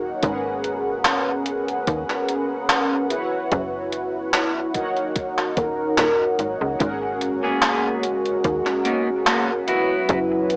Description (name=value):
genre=vaporwave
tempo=73 BPM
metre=4/4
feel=swing 54% on 16ths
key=G# minor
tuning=A4 = 440 Hz
part: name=mellow synth brass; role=accompaniment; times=0.0-10.6 s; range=C#4 to F#5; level=-23 LUFS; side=equal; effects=lush chorus, cassette tape, tape echo
part: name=slap-like FM bass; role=bass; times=0.0-10.6 s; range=D#1 to D#2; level=-25 LUFS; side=equal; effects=none
part: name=electronic kick drum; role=drums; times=0.2-10.3 s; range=none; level=-28 LUFS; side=equal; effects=overdrive, cassette tape
part: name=gated 80s digital drum machine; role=drums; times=0.2-10.6 s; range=handclaps, hi-hat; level=-22 LUFS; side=equal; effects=gated reverb, overdrive, cassette tape
part: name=warm velvety synth lead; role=melody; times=5.6-6.8 s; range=A#4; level=-27 LUFS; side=equal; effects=chorus, cassette tape, tape echo
part: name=warbly tape-like pad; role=sustained chords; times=7.1-10.6 s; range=F#3 to B4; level=-24 LUFS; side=equal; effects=chorus, built-in reverb, cassette tape
part: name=clean electric guitar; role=riff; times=6.8-10.5 s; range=A#3 to G#4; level=-24 LUFS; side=equal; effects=wide subtle chorus, cassette tape, tape echo
room=moderate small room reverb, RT60 0.5 s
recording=home recording on cassette, small speaker sound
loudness=-19 LUFS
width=side -30 dB against mid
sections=0.0-10.6 A section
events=none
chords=0.2 G#m11; 3.1 F#7sus4; 4.7 D#m7; 6.8 G#m11; 9.7 F#7sus4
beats=| 0.23 1.05 1.87 2.69 | 3.51 4.34 5.16 5.98 | 6.80 7.62 8.45 9.27 | 10.09